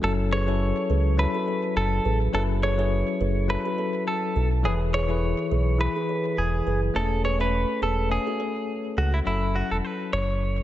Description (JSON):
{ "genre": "afrobeats", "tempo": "104 BPM", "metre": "4/4", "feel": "swing 55% on 16ths", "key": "unclear", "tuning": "A4 = 441 Hz", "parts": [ { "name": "direct-recorded clean electric guitar", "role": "melody", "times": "0.0-10.6 s", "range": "E4 to C#5", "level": "-28 LUFS", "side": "equal", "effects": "spring reverb, digital delay" }, { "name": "bell-like tine electric piano", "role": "accompaniment", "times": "0.0-10.6 s", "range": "E3 to B4", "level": "-29 LUFS", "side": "left 6 dB", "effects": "medium stereo tremolo" }, { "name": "kalimba", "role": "riff", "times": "0.0-9.1 s", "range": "E4 to C#5", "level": "-33 LUFS", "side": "right 7 dB", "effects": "digital delay" }, { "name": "sub bass with octave", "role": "bass", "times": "0.0-10.6 s", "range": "E1 to C#2", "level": "-24 LUFS", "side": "equal", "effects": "none" } ], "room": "light reverb, digital ambience", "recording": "nothing above 8.0 kHz", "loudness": "-22 LUFS", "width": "side -13 dB against mid", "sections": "0.0-9.3 A section; 9.3-10.6 B section", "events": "none", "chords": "0.0 F#m7; 4.6 Amaj7/E", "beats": "| 0.03 0.61 1.18 1.76 | 2.34 2.91 3.49 4.07 | 4.64 5.22 5.80 6.38 | 6.95 7.53 8.11 8.68 | 9.26 9.84 10.41" }